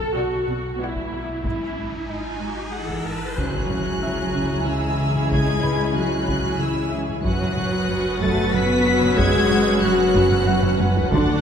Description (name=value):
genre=cinematic, suspense film score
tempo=93 BPM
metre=3/4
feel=straight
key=C# minor from 3.4 s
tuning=A4 = 440 Hz
part: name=warm symphonic viola section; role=accompaniment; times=0.0-11.4 s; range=C#4 to A4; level=-28 LUFS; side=equal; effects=none
part: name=warm chamber cello section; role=riff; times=0.0-11.3 s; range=F#2 to C#4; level=-27 LUFS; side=right 1 dB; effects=none
part: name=deep rumbling drone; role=drone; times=0.0-11.4 s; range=F#1 to D2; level=-32 LUFS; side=equal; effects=built-in reverb, phaser
part: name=riser and impact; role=sound effects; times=0.8-5.3 s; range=none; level=-34 LUFS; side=equal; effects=none
part: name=felt-muted upright piano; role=texture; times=0.0-11.4 s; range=B4 to B5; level=-34 LUFS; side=left 4 dB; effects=none
part: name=warm symphonic violin section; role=melody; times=0.2-11.1 s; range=F#5 to B6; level=-29 LUFS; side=left 2 dB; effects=none
part: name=rich studio violin section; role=second line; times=0.2-11.4 s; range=G#4 to A5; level=-29 LUFS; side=right 1 dB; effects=none
part: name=taiko ensemble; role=drums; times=1.0-11.4 s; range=none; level=-29 LUFS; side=equal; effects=none
part: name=warm chamber cello section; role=bass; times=1.4-11.1 s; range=G#2 to B3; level=-27 LUFS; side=right 1 dB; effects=none
part: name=warm chamber double bass section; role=bass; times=1.4-11.4 s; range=G#1 to F#2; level=-28 LUFS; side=right 3 dB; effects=none
part: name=clear clarinet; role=second line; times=2.7-11.1 s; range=E4 to B4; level=-28 LUFS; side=left 2 dB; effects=none
part: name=mellow French horn section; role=sustained chords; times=3.4-11.4 s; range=G#3 to F#4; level=-27 LUFS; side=left 3 dB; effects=none
part: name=rich symphonic violin section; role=texture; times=3.4-11.4 s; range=G#5 to A6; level=-35 LUFS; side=left 3 dB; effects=none
room=wet concert hall reverb, RT60 2.5 s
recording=none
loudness=-19 LUFS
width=side -8 dB against mid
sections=0.0-3.4 A section; 3.4-11.4 B section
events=riser 0.8-3.4; impact 3.4-5.3; drum fill 10.6-11.1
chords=0.0 Bm; 1.4 G#5; 3.4 C#m; 7.3 F#sus4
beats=0.15 0.80 | 1.45 2.09 2.73 | 3.38 4.03 4.67 | 5.32 5.96 6.61 | 7.25 7.90 8.54 | 9.19 9.83 10.48 | 11.12